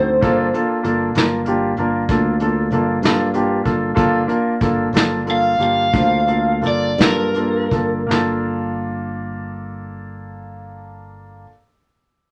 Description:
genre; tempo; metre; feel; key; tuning
slow blues; 52-64 BPM (dotted quarters); 12/8; straight; G minor; A4 = 440 Hz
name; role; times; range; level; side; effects
overdriven semi-hollow guitar; melody; 0.0-8.1 s; Bb4 to F5; -20 LUFS; equal; none
warm concert grand piano; accompaniment; 0.0-11.5 s; Bb3 to C5; -22 LUFS; equal; none
fingered electric bass; bass; 0.0-11.5 s; G1 to G2; -26 LUFS; equal; none
vintage brush drum kit; drums; 0.2-8.3 s; hi-hat, kick drum, snare drum; -22 LUFS; equal; none
room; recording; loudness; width
moderate studio ambience, RT60 0.4 s; none; -18 LUFS; mono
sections
0.0-8.1 A section; 8.1-12.3 B section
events
overdriven electric guitar solo 0.0-8.1; slowing down 2.7-8.1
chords
0.2 Gm7

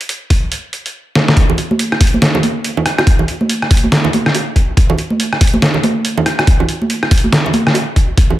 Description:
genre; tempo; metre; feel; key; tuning
dubstep; 141 BPM; 4/4; swing 60% on 16ths, half-time; none; none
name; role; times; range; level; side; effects
trip hop sampler-style drum kit; drums; 0.0-8.3 s; hi-hat, rim click, snare drum; -15 LUFS; equal; none
electronic kick drum; drums; 0.3-8.3 s; none; -11 LUFS; equal; none
congas and bongos; percussion; 1.5-8.4 s; none; -17 LUFS; right 2 dB; dub echo
room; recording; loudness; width
light reverb, digital ambience; none; -11 LUFS; side -14 dB against mid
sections
0.0-1.4 A section; 1.4-8.4 B section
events
drum fill 1.2; drop 1.4-8.4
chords
none

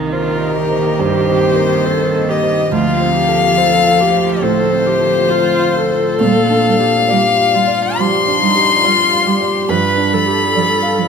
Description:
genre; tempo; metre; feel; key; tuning
neoclassical piano and strings; 70 BPM; 4/4; rubato; C dorian; A4 = 439 Hz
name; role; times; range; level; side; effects
dark cello; second line; 0.0-11.1 s; Eb3 to G3; -20 LUFS; right 5 dB; none
felt-muted upright piano; accompaniment; 0.0-11.1 s; C2 to F5; -19 LUFS; right 3 dB; none
warm viola; accompaniment; 0.0-11.1 s; Eb4 to B4; -19 LUFS; right 1 dB; none
deep dark ambient pad; sustained chords; 0.0-11.1 s; G3 to Eb5; -24 LUFS; left 1 dB; chorus, built-in reverb
rich violin; melody; 0.1-11.1 s; Bb4 to C6; -14 LUFS; left 6 dB; none
room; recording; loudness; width
moderate recital hall reverb, RT60 1.5 s; minimal, uncompressed stereo recording; -11 LUFS; side -6 dB against mid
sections
0.0-11.1 A section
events
none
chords
0.0 Cm7; 2.7 Dm7; 6.2 Bb6; 9.7 G7

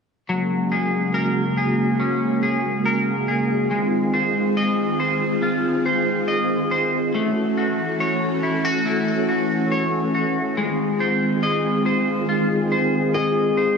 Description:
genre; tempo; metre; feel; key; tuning
dream pop; 70 BPM; 4/4; straight; unclear; A4 = 435 Hz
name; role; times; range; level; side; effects
string machine, violas; sustained chords; 0.3-13.8 s; Db3 to A4; -21 LUFS; equal; ensemble chorus
electric guitar at the edge of break-up; arpeggios; 0.3-13.8 s; Gb3 to Eb5; -22 LUFS; left 1 dB; analog chorus, ping-pong delay
felt-muted upright piano; melody; 13.1-13.8 s; Ab4; -21 LUFS; left 5 dB; ping-pong delay
room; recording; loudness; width
moderate plate reverb, RT60 2.9 s; none; -19 LUFS; side -5 dB against mid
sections
0.3-13.8 A section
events
none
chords
0.3 Gbadd9; 3.7 Ab6; 7.1 A6; 10.6 Ab6

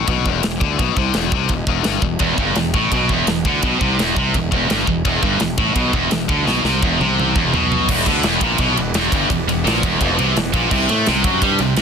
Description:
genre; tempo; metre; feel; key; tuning
heavy metal; 169 BPM; 4/4; straight; E minor; A4 = 439 Hz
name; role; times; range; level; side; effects
heavy high-gain guitar; riff; 0.0-11.8 s; E2 to A3; -20 LUFS; left 14 dB; distortion
fuzz fingered electric bass; bass; 0.0-11.8 s; E1 to A2; -22 LUFS; right 1 dB; overdrive
tight metal drum kit; drums; 0.1-11.8 s; crash cymbal, kick drum, ride cymbal, snare drum, toms; -21 LUFS; right 1 dB; none
scooped high-gain guitar; riff; 2.2-11.8 s; E2 to A3; -20 LUFS; right 14 dB; distortion
pipe organ, trumpet; sustained chords; 7.9-11.8 s; C3 to C5; -29 LUFS; equal; none
room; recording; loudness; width
small room ambience; dense, heavily limited modern master; -15 LUFS; side -6 dB against mid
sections
0.0-7.9 A section; 7.9-11.8 B section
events
drum fill 6.5-7.9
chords
0.0 Em; 10.7 C5

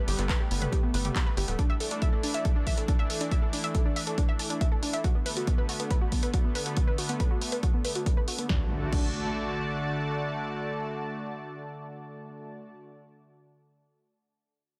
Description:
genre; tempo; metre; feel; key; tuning
uplifting trance; 139 BPM; 4/4; straight; D major; A4 = 436 Hz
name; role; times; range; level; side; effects
lush unison pad; sustained chords; 0.0-12.7 s; D3 to A5; -37 LUFS; equal; chorus, sidechain pumping
analog pluck; arpeggios; 0.1-9.0 s; B3 to E5; -37 LUFS; equal; chorus, sidechain pumping, delay
tight sequencer bass; bass; 0.1-1.6 s; D1 to G1; -32 LUFS; equal; sidechain pumping
punchy analog drum machine; drums; 0.1-9.1 s; crash cymbal, handclaps, hi-hat, snare drum, toms; -37 LUFS; equal; sidechain pumping on hats, sidechain pumping on toms, sidechain pumping on cymbals
electronic kick drum; drums; 0.3-9.1 s; none; -29 LUFS; equal; none
impact; sound effects; 8.5-12.8 s; none; -39 LUFS; equal; none
room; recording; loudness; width
little or no reverb; none; -28 LUFS; mono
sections
0.0-8.5 A section; 8.5-11.9 B section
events
filter sweep on synth pluck 0.0-8.5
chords
0.0 Gadd9; 1.6 Asus4; 5.0 Bm7; 8.5 D

